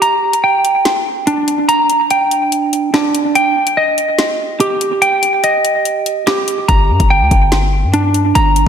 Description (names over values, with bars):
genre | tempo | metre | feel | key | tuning
hip hop, drill | 144 BPM | 4/4 | half-time | G minor | A4 = 440 Hz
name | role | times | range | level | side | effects
semi-hollow electric guitar | arpeggios | 0.0-8.7 s | D4 to Bb5 | -12 LUFS | right 1 dB | low-pass filter, analog delay
drill drum kit | drums | 0.0-8.7 s | hi-hat, kick drum, snare drum | -17 LUFS | left 1 dB | overdrive
hard-hitting 808-style bass | bass | 6.7-8.7 s | G1 to G2 | -14 LUFS | left 1 dB | none
room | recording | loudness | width
wet lush hall reverb, RT60 2.0 s | dreamy mix soaked in reverb | -11 LUFS | side -8 dB against mid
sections
0.0-8.7 A section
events
break 0.0-6.7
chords
0.0 Gm; 3.4 Eb; 6.7 Gm